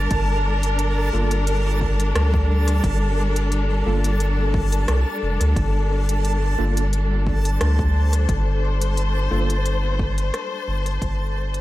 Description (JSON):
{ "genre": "ambient dub", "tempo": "88 BPM", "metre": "4/4", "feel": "swing 54% on 16ths", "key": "G minor", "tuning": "A4 = 437 Hz", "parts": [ { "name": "warm studio string section", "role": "sustained chords", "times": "0.0-11.6 s", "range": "G3 to C5", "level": "-26 LUFS", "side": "left 2 dB", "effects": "none" }, { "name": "round analog bass", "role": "bass", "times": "0.0-11.6 s", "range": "F1 to D2", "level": "-20 LUFS", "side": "equal", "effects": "none" }, { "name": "backwards swelling texture", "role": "texture", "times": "0.0-11.6 s", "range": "A5", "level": "-31 LUFS", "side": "equal", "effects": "built-in reverb" }, { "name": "electronic kick drum", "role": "drums", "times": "0.1-11.2 s", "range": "none", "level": "-25 LUFS", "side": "equal", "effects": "overdrive" }, { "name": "organic electronic drum kit", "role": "drums", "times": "0.1-11.6 s", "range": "hi-hat, rim click", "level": "-29 LUFS", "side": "equal", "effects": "overdrive, dub echo" }, { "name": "tine electric piano", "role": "stabs", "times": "1.1-9.5 s", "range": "Bb3 to A4", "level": "-32 LUFS", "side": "right 2 dB", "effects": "overdrive, medium stereo tremolo, dub echo" } ], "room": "digital ambience", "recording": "none", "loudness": "-18 LUFS", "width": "side -16 dB against mid", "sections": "0.0-11.6 A section", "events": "fade-out 9.2-11.6", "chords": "0.0 Gm" }